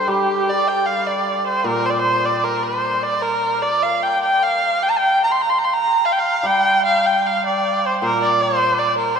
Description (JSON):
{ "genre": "chinese traditional, Chinese chamber ensemble", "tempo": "76 BPM", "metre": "2/4", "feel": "rubato", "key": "unclear", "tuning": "A4 = 440 Hz", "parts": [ { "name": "warm erhu", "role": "melody", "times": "0.0-9.2 s", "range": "G4 to C6", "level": "-16 LUFS", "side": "right 1 dB", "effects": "none" }, { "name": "hammered dulcimer", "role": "accompaniment", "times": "0.0-4.0, 6.4-9.2 s", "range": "Bb2 to G3", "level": "-26 LUFS", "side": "equal", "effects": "none" } ], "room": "wet cathedral reverb, RT60 5.8 s", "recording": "recorded in a church or concert hall", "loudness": "-16 LUFS", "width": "side -6 dB against mid", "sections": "0.0-9.2 A section", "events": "none", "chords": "none" }